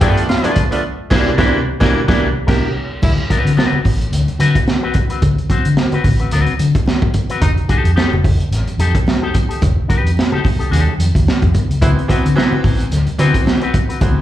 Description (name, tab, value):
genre	funk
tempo	109 BPM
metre	4/4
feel	swing 56% on 16ths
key	D mixolydian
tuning	A4 = 438 Hz
part	warm baritone saxophone	second line	0.0-3.1, 7.4-7.5, 11.8-11.9 s	Eb4 to G4	-24 LUFS	left 1 dB	slapback echo
part	electric guitar with an envelope filter	accompaniment	0.0-14.0 s	C4 to C5	-21 LUFS	left 6 dB	slapback echo
part	bright upright piano	stabs	0.0-2.7, 11.8-14.2 s	E3 to Bb4	-19 LUFS	right 4 dB	slapback echo
part	vintage muted fingered electric bass	bass	0.0-14.2 s	F1 to D3	-16 LUFS	left 1 dB	none
part	crunchy breakbeat drum kit	drums	0.0-14.2 s	crash cymbal, hi-hat, kick drum, snare drum	-16 LUFS	equal	none
part	congas	percussion	0.0-14.2 s	none	-25 LUFS	right 6 dB	slapback echo
room	light reverb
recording	live gig heard through the venue's PA, club reverb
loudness	-13 LUFS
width	side -13 dB against mid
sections	0.0-3.0 A section; 3.0-14.2 B section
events	band accent 0.8-3.0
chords	0.0 G9; 0.8 C9; 3.0 D6; 7.4 F9; 11.8 D13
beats	0.29 | 0.84 1.39 1.93 2.48 | 3.03 3.58 4.13 4.67 | 5.22 5.77 6.32 6.87 | 7.42 7.97 8.52 9.07 | 9.62 10.17 10.71 11.26 | 11.81 12.36 12.91 13.46 | 14.01